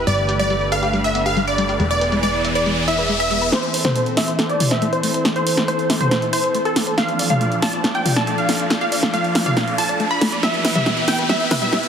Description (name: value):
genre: uplifting trance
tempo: 139 BPM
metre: 4/4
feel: straight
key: A minor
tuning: A4 = 435 Hz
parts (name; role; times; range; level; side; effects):
- supersaw stab; melody; 0.0-11.9 s; A4 to B5; -21 LUFS; equal; low-pass filter, ping-pong delay
- lush unison pad; sustained chords; 0.0-11.9 s; D3 to D5; -24 LUFS; equal; chorus, vintage 12-bit sampler grit
- solid FM bass; bass; 0.0-3.5 s; E1 to G1; -26 LUFS; equal; none
- tight sequenced synth; arpeggios; 0.1-11.8 s; G3 to F5; -26 LUFS; left 3 dB; chorus, ping-pong delay
- punchy analog drum machine; drums; 0.1-11.9 s; hi-hat, snare drum, toms; -21 LUFS; equal; overdrive, low-pass filter on hats, low-pass filter on snare, low-pass filter on toms, low-pass filter on room
- riser; sound effects; 1.2-11.9 s; none; -28 LUFS; left 1 dB; none
room: light reverb, digital ambience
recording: heavily compressed radio sound, multiband compression, high-pass filter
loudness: -16 LUFS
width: side -7 dB against mid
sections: 0.0-3.5 A section; 3.5-11.9 B section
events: riser 1.2-3.5, 3.5-11.9; build-up 3.5-11.9; drum fill 3.5-11.9; filter sweep on supersaw synth 3.5-11.9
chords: 0.1 Gadd9; 1.8 E; 3.5 Am; 7.0 Dm; 10.4 Em